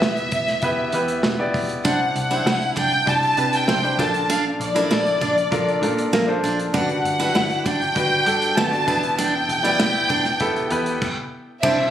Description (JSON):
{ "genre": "piano-driven pop", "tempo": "98 BPM", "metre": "4/4", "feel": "straight", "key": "unclear", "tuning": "A4 = 440 Hz", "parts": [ { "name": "rich studio violin section", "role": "melody", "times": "0.0-11.9 s", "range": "D5 to A5", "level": "-22 LUFS", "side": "equal", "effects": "none" }, { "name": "clear baby grand piano", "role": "accompaniment", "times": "0.0-11.9 s", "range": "G2 to D5", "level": "-24 LUFS", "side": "left 1 dB", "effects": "none" }, { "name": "vintage muted picked electric bass", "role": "bass", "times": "0.0-11.9 s", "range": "E1 to C3", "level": "-29 LUFS", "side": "equal", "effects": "none" }, { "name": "modern studio drum kit", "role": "drums", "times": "0.0-11.8 s", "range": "crash cymbal, hi-hat, kick drum, snare drum", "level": "-26 LUFS", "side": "right 1 dB", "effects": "none" }, { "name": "picked steel-string acoustic guitar", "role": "riff", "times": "1.8-11.8 s", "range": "Bb3 to E4", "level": "-25 LUFS", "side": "right 3 dB", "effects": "none" } ], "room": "light reverb, studio reverb", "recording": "recorded on a phone in the room", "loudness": "-18 LUFS", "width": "side -10 dB against mid", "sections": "0.0-11.6 A section", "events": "stop 11.0-11.6", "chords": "0.0 Em; 1.8 Cadd9; 4.0 Bbmaj7; 6.7 Gmaj7; 8.9 Em" }